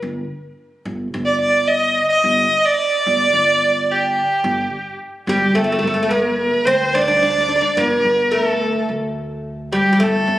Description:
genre	Arabic maqam ensemble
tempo	108 BPM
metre	4/4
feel	straight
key	G maqam suznak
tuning	A4 = 440 Hz
part	upright bass	bass	0.0-10.4 s	G1 to D2	-27 LUFS	equal	none
part	rich violin	melody	1.3-10.4 s	G4 to Eb5+21c	-16 LUFS	right 1 dB	none
part	oud	second line	5.3-10.4 s	G3 to D4	-19 LUFS	equal	none
room	moderate concert hall reverb, RT60 1.9 s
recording	recorded on a phone in the room, club reverb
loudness	-15 LUFS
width	side -14 dB against mid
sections	0.0-5.6 A section; 5.6-10.4 B section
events	none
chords	none

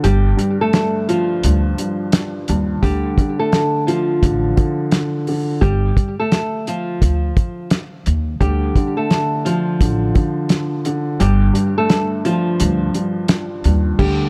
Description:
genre	hip hop, boom-bap hip-hop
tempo	86 BPM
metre	4/4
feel	swing 61% on 16ths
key	unclear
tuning	A4 = 440 Hz
part	nylon-string guitar	melody	0.0-14.3 s	F3 to A4	-23 LUFS	equal	high-pass filter, low-pass filter, digital delay
part	dark upright piano	accompaniment	0.0-14.3 s	G2 to F3	-23 LUFS	equal	high-pass filter, low-pass filter
part	upright bass	bass	0.0-14.3 s	G1 to Eb2	-20 LUFS	equal	none
part	cloth-damped thuddy drum kit	drums	0.0-14.2 s	crash cymbal, hi-hat, kick drum, snare drum	-20 LUFS	equal	none
room	small room reverb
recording	none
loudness	-18 LUFS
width	mono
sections	0.0-14.0 A section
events	break 0.0-2.8; kick muted 11.2-14.0; hi-hats muted 14.0-14.3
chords	0.0 G5; 2.8 Dm; 5.6 G5; 8.4 Dm; 11.2 G5

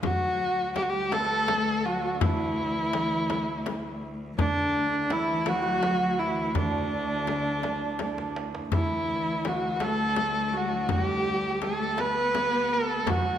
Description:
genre	Persian modal ensemble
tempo	55 BPM (dotted quarters)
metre	6/8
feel	straight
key	D dastgah mahur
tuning	A4 = 436 Hz
part	rich kamancheh	melody	0.0-13.4 s	D4 to B4	-27 LUFS	equal	tape echo
part	santur	second line	0.0-13.4 s	D4 to B4	-36 LUFS	right 4 dB	none
part	warm symphonic cello section	second line	0.0-13.4 s	D3 to B3	-34 LUFS	left 1 dB	none
part	bright cello	drone	0.0-13.4 s	D2	-36 LUFS	equal	none
part	frame drum	percussion	0.0-13.2 s	none	-34 LUFS	left 6 dB	none
part	tombak	percussion	0.0-13.2 s	none	-34 LUFS	right 2 dB	none
room	wet recital hall reverb, RT60 1.7 s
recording	none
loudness	-24 LUFS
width	side -10 dB against mid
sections	0.0-13.4 A section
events	drum fill 8.0-8.7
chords	none

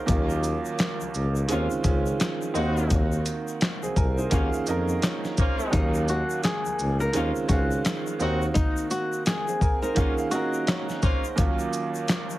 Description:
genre	hip hop, boom-bap hip-hop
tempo	85 BPM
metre	4/4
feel	swing 61% on 16ths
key	Eb dorian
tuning	A4 = 440 Hz
part	clear upright piano	accompaniment	0.0-12.4 s	Eb2 to Ab5	-28 LUFS	right 3 dB	high-pass filter, low-pass filter
part	warm tuba	bass	0.1-8.5 s	C2 to F2	-27 LUFS	left 1 dB	none
part	dusty soul sampler-style drum kit	drums	0.1-12.3 s	handclaps, hi-hat, kick drum, shaker, snare drum	-25 LUFS	left 1 dB	none
part	tube shaker	percussion	0.1-12.4 s	none	-44 LUFS	left 7 dB	none
part	warm horn section	stabs	1.5-11.3 s	Bb3 to Gb4	-35 LUFS	left 1 dB	high-pass filter, low-pass filter, digital delay
part	flamenco guitar	melody	5.7-10.8 s	Eb4 to Bb4	-30 LUFS	left 1 dB	high-pass filter, low-pass filter, digital delay
room	little or no reverb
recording	heavily compressed radio sound, multiband compression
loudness	-23 LUFS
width	side -16 dB against mid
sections	0.0-12.4 A section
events	none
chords	0.1 Ebm7; 1.5 Bbm7; 2.6 Cm7b5; 4.3 Ebm13; 5.7 Ebm7; 7.1 Bbm7; 8.2 Ab9/Eb; 10.0 Ebm13; 11.4 Ebm7

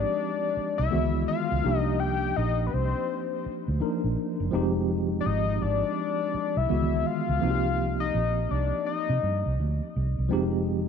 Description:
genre	R&B, neo-soul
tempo	83 BPM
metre	4/4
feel	swing 62% on 16ths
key	F dorian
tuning	A4 = 436 Hz
part	fat analog lead	melody	0.0-9.5 s	B4 to G5	-29 LUFS	left 8 dB	chorus, tape echo
part	tine electric piano	accompaniment	0.0-10.9 s	Eb3 to Bb4	-29 LUFS	right 1 dB	overdrive, fast stereo tremolo
part	vintage muted fingered electric bass	bass	0.0-10.9 s	F1 to C3	-28 LUFS	right 2 dB	none
room	light reverb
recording	none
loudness	-24 LUFS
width	side -7 dB against mid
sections	0.0-10.9 A section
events	none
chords	0.0 Fm7; 0.9 Dbm11; 1.6 Cm11; 4.5 Fm7; 6.7 Dbm11; 7.4 Cm11; 10.3 Fm7

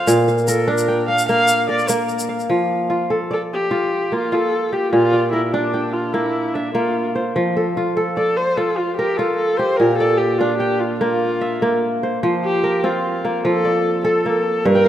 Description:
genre	west african traditional, West African string and xylophone music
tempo	99 BPM (dotted quarters)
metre	12/8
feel	straight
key	F major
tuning	A4 = 440 Hz
part	dark viola	melody	0.0-14.9 s	D4 to F5	-20 LUFS	equal	none
part	kora	arpeggios	0.0-14.9 s	G2 to G5	-18 LUFS	equal	none
part	tube shaker	percussion	0.1-2.4 s	none	-28 LUFS	left 4 dB	none
room	wet lush hall reverb, RT60 2.8 s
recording	rough home demo mix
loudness	-16 LUFS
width	side -11 dB against mid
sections	0.0-2.5 A section; 2.5-12.2 B section; 12.2-14.9 C section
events	viola solo 0.0-2.5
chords	0.1 Bb; 2.5 F; 4.9 Bb; 7.4 F; 9.8 Bb; 12.2 F

